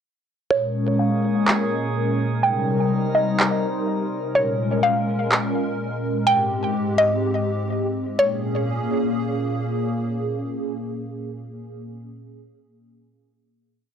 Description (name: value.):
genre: hip hop, atmospheric cloud-rap.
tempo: 125 BPM.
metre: 4/4.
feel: half-time.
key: Bb dorian.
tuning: A4 = 440 Hz.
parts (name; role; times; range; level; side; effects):
mallet-like synth pluck; melody; 0.5-9.6 s; Db5 to G5; -22 LUFS; equal; chorus, phaser, low-pass filter, analog delay.
hollow soft pad; sustained chords; 0.5-11.9 s; Ab2 to Bb4; -23 LUFS; left 1 dB; ensemble chorus, low-pass filter.
drifting glass-harmonics texture; texture; 0.8-4.3 s; Bb3 to Eb5; -32 LUFS; right 2 dB; chorus, built-in reverb.
electronic handclaps; drums; 1.5-5.4 s; none; -20 LUFS; right 1 dB; vintage 12-bit sampler grit.
room: light reverb, digital ambience.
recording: dry, gritty hardware recording.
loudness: -20 LUFS.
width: side -8 dB against mid.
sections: 0.5-8.2 breakdown; 8.2-12.0 final chord.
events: filter sweep 0.5-8.2.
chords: 0.5 Bbm7; 2.4 Cm7; 4.3 Bbm7; 6.3 Abmaj7; 8.2 Bbm7.